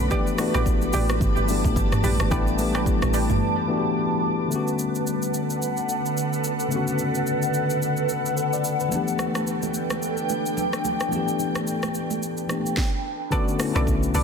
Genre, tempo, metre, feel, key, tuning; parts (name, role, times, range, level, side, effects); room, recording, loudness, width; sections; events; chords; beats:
amapiano; 109 BPM; 4/4; swing 58% on 16ths; B minor; A4 = 444 Hz
tine electric piano; accompaniment; 0.0-14.2 s; C#3 to D5; -26 LUFS; left 5 dB
ethereal airy pad; sustained chords; 0.0-12.7 s; D3 to D6; -26 LUFS; right 1 dB; ensemble chorus, built-in reverb, phaser, sidechain pumping
deep log drum bass; bass; 0.0-3.4, 13.8-14.2 s; G1 to B1; -24 LUFS; right 1 dB
punchy chord stab; stabs; 0.1-3.3, 13.3-14.2 s; G4 to D5; -30 LUFS; right 1 dB; chorus, digital delay
afro-pop drum kit; drums; 0.1-14.2 s; hi-hat, kick drum, rim click, shaker, snare drum, toms; -27 LUFS; right 1 dB
congas; percussion; 0.1-3.4, 8.9-12.6 s; -34 LUFS; right 10 dB
light reverb; dense, heavily limited modern master; -21 LUFS; side -6 dB against mid
0.0-4.5 A section; 4.5-13.3 B section
drop 0.0-4.5; drums muted 3.4-4.5
0.1 A9sus4; 4.5 Bm7; 8.9 A9sus4; 13.3 Bm7
| 0.11 0.66 1.21 1.76 | 2.31 2.86 3.41 3.96 | 4.51 5.07 5.62 6.17 | 6.72 7.27 7.82 8.37 | 8.92 9.47 10.02 10.57 | 11.12 11.67 12.22 12.77 | 13.32 13.87